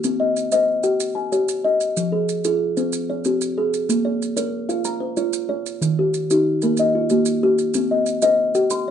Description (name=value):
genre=southern african traditional, mbira-style interlocking cycle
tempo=124 BPM (dotted quarters)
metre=12/8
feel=straight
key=Bb equiheptatonic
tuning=A4 = 440 Hz
part: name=kalimba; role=arpeggios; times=0.0-8.9 s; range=Eb3 to C6-29c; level=-18 LUFS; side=left 1 dB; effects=none
part: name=maracas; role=percussion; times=0.0-8.9 s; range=none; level=-30 LUFS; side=right 8 dB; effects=none
room=moderate studio reverb, RT60 0.6 s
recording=dark, warm production, nothing above 10.9 kHz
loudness=-18 LUFS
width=side -8 dB against mid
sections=0.0-3.9 A section; 3.9-8.9 B section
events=none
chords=0.0 Cm; 2.0 Fm; 3.9 Bbm; 5.8 Eb; 7.7 Cm